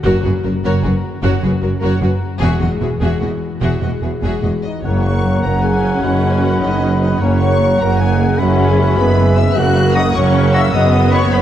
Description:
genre	cinematic, heroic adventure film score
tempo	101 BPM (dotted quarters)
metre	6/8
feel	straight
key	F# mixolydian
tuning	A4 = 442 Hz
part	warm symphonic violin section	melody	0.0-11.4 s	B4 to F#6	-30 LUFS	left 3 dB	none
part	warm symphonic violin section	second line	0.0-11.4 s	F#4 to F#6	-28 LUFS	left 3 dB	none
part	rich studio viola section	accompaniment	0.0-11.4 s	A#3 to F#4	-22 LUFS	equal	none
part	concert harp	arpeggios	0.0-11.4 s	E2 to C#5	-23 LUFS	left 5 dB	none
part	rich symphonic double bass section	bass	0.0-11.4 s	E1 to F#1	-18 LUFS	right 2 dB	none
part	rich symphonic cello section	bass	0.1-11.4 s	E2 to F#2	-20 LUFS	right 2 dB	none
part	warm French horn section	sustained chords	4.6-11.4 s	C#4 to E5	-20 LUFS	left 2 dB	none
part	dark clarinet	second line	4.8-11.2 s	D#5 to G#5	-29 LUFS	left 1 dB	none
part	clear trombone section	sustained chords	4.8-11.4 s	B2 to B3	-26 LUFS	right 3 dB	none
part	mellow trumpet	stabs	4.8-11.4 s	E5 to F#5	-25 LUFS	equal	none
part	warm tuba	bass	4.8-11.4 s	F#1	-21 LUFS	right 2 dB	none
part	mellow hollow concert flute	second line	4.9-11.2 s	A#5 to C#6	-26 LUFS	left 2 dB	none
part	warm oboe	second line	4.9-11.2 s	F#5 to B5	-27 LUFS	left 1 dB	none
room	moderate concert hall reverb, RT60 2.3 s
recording	dark, warm production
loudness	-12 LUFS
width	side -11 dB against mid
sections	0.0-4.8 A section; 4.8-11.4 B section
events	build-up 0.0-4.8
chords	0.1 F#; 2.4 Eadd9; 4.8 F#; 6.0 B/F#; 7.2 F#; 8.4 E/F#; 9.6 F#; 10.7 B/F#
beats	| 0.05 0.64 | 1.23 1.82 | 2.42 3.02 | 3.62 4.23 | 4.84 5.44 | 6.03 6.62 | 7.21 7.80 | 8.39 8.97 | 9.56 10.14 | 10.73 11.32

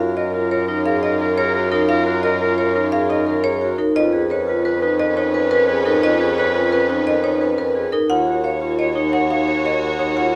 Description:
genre	classical, minimalist pattern music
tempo	174 BPM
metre	6/4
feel	straight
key	Db mixolydian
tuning	A4 = 436 Hz
part	marimba with medium hard mallets	melody	0.0-10.4 s	Bb4 to Gb5	-24 LUFS	equal	none
part	clear clarinet	second line	0.0-10.3 s	Bb4 to Db5	-27 LUFS	equal	none
part	warm symphonic violin section	sustained chords	0.0-10.4 s	Db4 to Db5	-31 LUFS	equal	none
part	vibraphone with medium hard mallets	arpeggios	0.0-10.4 s	Eb4 to Db5	-23 LUFS	equal	none
part	clear bassoon	bass	0.0-10.4 s	Eb2 to Gb2	-25 LUFS	equal	none
room	moderate recital hall reverb, RT60 1.6 s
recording	none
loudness	-18 LUFS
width	mono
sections	0.0-10.4 A section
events	none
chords	0.0 Gbmaj9; 4.0 Db9/F; 8.1 Ebm7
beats	0.17 0.51 0.86 1.20 1.55 | 1.89 2.24 2.58 2.93 3.27 3.62 | 3.96 4.30 4.65 5.00 5.34 5.68 | 6.03 6.37 6.72 7.06 7.41 7.75 | 8.10 8.44 8.79 9.13 9.48 9.82 | 10.17

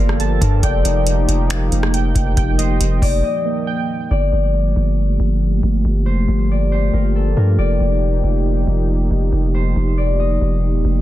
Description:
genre	hip hop, atmospheric cloud-rap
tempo	138 BPM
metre	4/4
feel	half-time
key	G minor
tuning	A4 = 438 Hz
part	concert harp	melody	0.0-11.0 s	A4 to Eb5	-25 LUFS	left 5 dB	low-pass filter, tape echo
part	dark analog pad	sustained chords	0.0-11.0 s	F3 to A4	-22 LUFS	right 1 dB	chorus, sidechain pumping
part	warbly lo-fi synth keys	arpeggios	0.0-4.1 s	Bb3 to A5	-25 LUFS	right 4 dB	chorus, low-pass filter, tape echo
part	long sustained 808-style bass	bass	0.0-11.0 s	Eb1 to G2	-17 LUFS	equal	none
part	booming analog drum machine	drums	0.1-3.2 s	finger snaps, hi-hat, kick drum, rim click	-18 LUFS	equal	overdrive, soft clipping on snare
room	little or no reverb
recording	dense, heavily limited modern master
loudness	-15 LUFS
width	side -14 dB against mid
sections	0.0-4.1 A section; 4.1-11.0 B section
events	break 3.2-4.1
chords	0.0 Gm9; 0.6 F9sus4; 4.1 Gm9; 7.6 F9sus4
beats	0.20 | 0.63 1.07 1.50 1.94 | 2.37 2.81 3.24 3.67 | 4.11 4.54 4.98 5.41 | 5.85 6.28 6.72 7.15 | 7.59 8.02 8.46 8.89 | 9.33 9.76 10.20 10.63

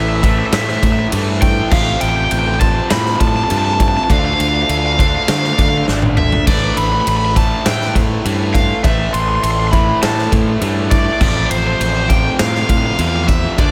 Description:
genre	post-rock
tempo	101 BPM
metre	4/4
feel	straight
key	A minor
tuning	A4 = 440 Hz
part	overdriven electric guitar	melody	0.0-13.7 s	C5 to C6	-21 LUFS	equal	phaser, digital delay
part	shimmering ambient pad	sustained chords	0.1-13.7 s	D3 to C5	-33 LUFS	equal	none
part	distorted electric guitar	riff	0.0-13.7 s	F2 to D4	-22 LUFS	equal	distortion
part	fingered electric bass	bass	0.0-13.7 s	G#1 to D3	-21 LUFS	equal	none
part	huge arena drum kit	drums	0.2-13.7 s	crash cymbal, kick drum, ride cymbal, snare drum, toms	-19 LUFS	equal	none
room	light reverb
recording	none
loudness	-15 LUFS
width	mono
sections	0.0-13.7 A section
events	drum fill 5.9-6.5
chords	0.0 Amadd9; 1.7 F/A; 4.1 Dm7; 6.5 Am; 11.2 F/A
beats	0.52 1.12 | 1.71 2.31 2.90 3.50 | 4.09 4.68 5.28 5.87 | 6.46 7.06 7.65 8.24 | 8.84 9.43 10.02 10.62 | 11.21 11.80 12.39 12.99 | 13.58

